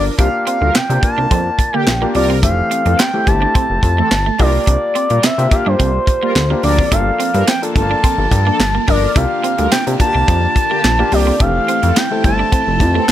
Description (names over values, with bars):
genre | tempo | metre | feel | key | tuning
early-eighties boogie funk | 107 BPM | 4/4 | straight | unclear | A4 = 440 Hz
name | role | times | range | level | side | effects
expressive synth lead | melody | 0.0-13.1 s | C5 to A5 | -17 LUFS | equal | chorus
mellow synth brass | second line | 0.0-13.1 s | D3 to Bb4 | -23 LUFS | equal | chorus, phaser
chorused synth bass | bass | 0.0-13.1 s | F1 to C3 | -16 LUFS | equal | none
warm grand piano | accompaniment | 0.2-13.1 s | E3 to Bb4 | -22 LUFS | left 3 dB | none
electric guitar at the edge of break-up | riff | 0.2-13.1 s | A3 to D4 | -24 LUFS | right 7 dB | wide subtle chorus
tight funk drum kit | drums | 0.2-13.1 s | handclaps, hi-hat, kick drum, snare drum | -16 LUFS | equal | none
string machine, violins | sustained chords | 6.9-13.1 s | D3 to A4 | -25 LUFS | equal | ensemble chorus
room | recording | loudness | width
small room ambience | none | -12 LUFS | side -12 dB against mid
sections
0.0-13.1 A section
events
none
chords
0.2 C9sus4; 2.4 Fmaj9; 4.4 C9sus4; 6.9 Gm9; 9.2 C9sus4; 11.4 Fmaj9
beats
| 0.19 0.75 1.31 1.87 | 2.43 2.99 3.55 4.11 | 4.67 5.23 5.79 6.35 | 6.92 7.47 8.04 8.60 | 9.16 9.72 10.28 10.84 | 11.40 11.96 12.52 13.08